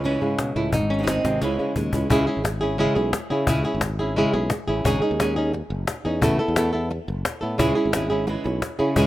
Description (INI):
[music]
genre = flamenco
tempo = 175 BPM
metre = 4/4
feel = straight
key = C# minor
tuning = A4 = 441 Hz
[part]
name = flamenco guitar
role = melody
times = 0.0-9.1 s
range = G#2 to A4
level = -23 LUFS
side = equal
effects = none
[part]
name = flamenco guitar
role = stabs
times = 0.0-2.1, 7.6-9.1 s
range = C#3 to G#4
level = -28 LUFS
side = right 4 dB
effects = none
[part]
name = sustaining fretless electric bass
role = bass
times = 0.0-9.1 s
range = F#1 to C#3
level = -26 LUFS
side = equal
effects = none
[part]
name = cajon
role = percussion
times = 0.4-9.1 s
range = none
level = -26 LUFS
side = left 2 dB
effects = none
[sound]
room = light reverb, small room ambience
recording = rough home demo mix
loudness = -20 LUFS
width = side -15 dB against mid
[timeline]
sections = 0.0-2.1 A section; 2.1-9.1 B section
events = drum fill 1.2-2.1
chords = 0.0 C#m; 0.7 G#; 1.4 C#m; 4.8 G#sus4; 6.2 Asus2; 7.6 C#m